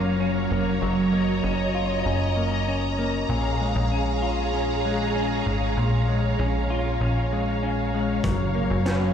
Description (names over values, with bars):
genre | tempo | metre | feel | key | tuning
dream pop | 97 BPM | 4/4 | straight | Bb minor | A4 = 441 Hz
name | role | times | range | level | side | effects
string machine, violas | sustained chords | 0.0-9.1 s | Gb3 to Bb5 | -26 LUFS | right 1 dB | phaser, ensemble chorus
semi-hollow electric guitar | arpeggios | 0.0-9.1 s | Bb2 to F4 | -26 LUFS | left 1 dB | lush chorus, ping-pong delay
plucky analog bass | bass | 0.0-9.1 s | F1 to Bb1 | -27 LUFS | equal | none
raw garage drum kit | drums | 8.2-9.0 s | hi-hat, kick drum, snare drum | -28 LUFS | equal | none
room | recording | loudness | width
light reverb, studio reverb | played on a big sound system in a bare room, large studio reverb | -22 LUFS | side -8 dB against mid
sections
0.0-9.1 A section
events
none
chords
0.0 Gbmaj7; 3.3 Bbm7; 8.2 Gbmaj7